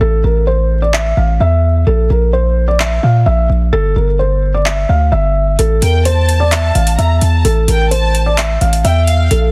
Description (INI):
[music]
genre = hip hop, trap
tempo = 129 BPM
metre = 4/4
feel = half-time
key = A phrygian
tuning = A4 = 440 Hz
[part]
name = felt-muted upright piano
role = melody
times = 0.0-9.5 s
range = A4 to F5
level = -19 LUFS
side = equal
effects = digital delay
[part]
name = distorted 808-style bass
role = bass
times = 0.0-9.5 s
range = G1 to Bb2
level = -15 LUFS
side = equal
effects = distortion
[part]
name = trap drum kit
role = drums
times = 0.9-9.4 s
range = handclaps, hi-hat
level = -23 LUFS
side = equal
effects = none
[part]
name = warm studio violin section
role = second line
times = 5.8-9.3 s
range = F5 to Bb5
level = -23 LUFS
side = equal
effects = digital delay
[sound]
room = small room reverb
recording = dense, heavily limited modern master, vinyl crackle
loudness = -13 LUFS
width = mono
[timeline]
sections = 0.0-9.5 A section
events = break 0.0-5.6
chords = 0.0 A5; 1.9 Bb(b5, no3); 3.7 G5; 5.6 A5